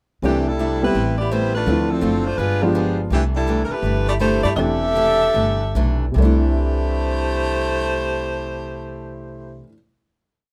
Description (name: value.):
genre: jazz, big band swing.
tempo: 141-167 BPM.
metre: 4/4.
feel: swing 66% on 8ths.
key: C major.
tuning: A4 = 440 Hz.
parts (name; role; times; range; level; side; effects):
warm saxophone section; melody; 0.2-9.6 s; E3 to E5; -24 LUFS; equal; none.
dark baby grand piano; accompaniment; 0.2-9.7 s; C3 to G4; -26 LUFS; equal; none.
picked steel-string acoustic guitar; accompaniment; 0.2-9.7 s; C3 to B4; -29 LUFS; equal; none.
upright bass; bass; 0.2-9.6 s; E1 to G2; -24 LUFS; equal; none.
room: light reverb.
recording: close, detailed microphones.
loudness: -20 LUFS.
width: mono.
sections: 0.2-6.2 A section; 6.2-9.6 final chord.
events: slowing down 3.1-6.2.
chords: 0.2 C69; 1.0 Am9; 1.7 Dm7; 2.4 G7b9; 3.1 C69.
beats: | 0.23 0.59 0.95 1.31 | 1.67 2.03 2.39 2.75 | 3.11 3.47 3.83 4.20 | 4.57 4.96 5.35 5.75 | 6.17 6.59 7.02 7.44 | 7.87 8.29 8.72 9.14.